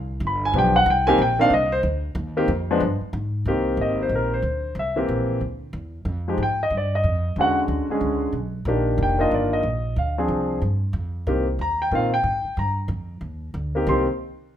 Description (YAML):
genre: jazz piano trio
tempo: 184 BPM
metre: 4/4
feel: swing 62% on 8ths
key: C minor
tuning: A4 = 440 Hz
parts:
  - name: upright bass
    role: bass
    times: 0.0-14.1 s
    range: F1 to Bb2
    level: -25 LUFS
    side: equal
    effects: none
  - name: warm grand piano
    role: melody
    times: 0.3-14.1 s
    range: D3 to C6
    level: -21 LUFS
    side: left 1 dB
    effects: none
room: moderate large studio reverb, RT60 0.9 s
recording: minimal, uncompressed stereo recording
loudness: -20 LUFS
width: side -10 dB against mid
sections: 0.0-3.5 A section; 3.5-13.9 B section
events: grand piano solo 0.0-3.5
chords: 0.2 G7; 0.9 Cm7; 2.8 N.C.; 3.5 Cm7; 4.8 C7; 6.1 Fm9; 7.4 E13; 8.7 Ebmaj7; 10.0 Dm7b5; 10.6 Fsus2; 11.3 Cm7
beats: 0.21 0.53 | 0.86 1.18 1.51 1.83 | 2.16 2.48 2.81 3.13 | 3.46 3.78 4.11 4.43 | 4.76 5.08 5.41 5.74 | 6.06 6.39 6.71 7.04 | 7.37 7.69 8.02 8.34 | 8.67 8.99 9.32 9.64 | 9.97 10.29 10.62 10.94 | 11.27 11.59 11.92 12.24 | 12.57 12.89 13.22 13.54 | 13.87